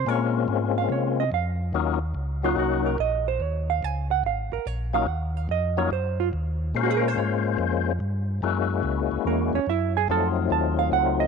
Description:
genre	soul jazz organ trio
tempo	144 BPM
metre	4/4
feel	swing 67% on 8ths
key	Bb minor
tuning	A4 = 442 Hz
part	hollow-body jazz guitar	accompaniment	0.0-11.3 s	Bb3 to A5	-26 LUFS	right 14 dB	none
part	mellow tonewheel organ	bass	0.0-11.3 s	Ab1 to C3	-27 LUFS	equal	slow rotary speaker
part	percussive tonewheel organ	melody	0.1-11.3 s	Gb3 to C5	-26 LUFS	left 14 dB	slow rotary speaker, overdrive, chorus vibrato
room	light reverb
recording	1960s-style stereo with parts hard left and right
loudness	-22 LUFS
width	side -5 dB against mid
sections	0.0-11.3 A section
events	hollow-body jazz guitar solo 0.0-11.3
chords	0.0 Bbm9; 1.7 Ebm9; 6.7 Bbm9; 8.4 Gb7; 10.1 F7b9

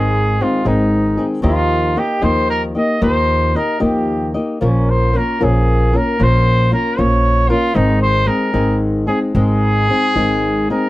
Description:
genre	mexican folk, mariachi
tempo	76 BPM (dotted quarters)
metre	6/8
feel	rubato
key	Ab major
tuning	A4 = 441 Hz
part	warm trumpet	melody	0.0-10.9 s	Db4 to Eb5	-18 LUFS	equal	none
part	flamenco guitar	accompaniment	0.0-10.9 s	Ab2 to Eb5	-17 LUFS	left 2 dB	none
part	upright bass	bass	0.0-10.7 s	Ab1 to Eb2	-17 LUFS	right 1 dB	none
room	little or no reverb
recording	dry, close 1970s-style studio recording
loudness	-13 LUFS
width	side -17 dB against mid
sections	0.0-10.9 A section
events	none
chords	0.0 Ab; 1.4 Ebadd9; 4.6 Bbm; 7.8 Ab

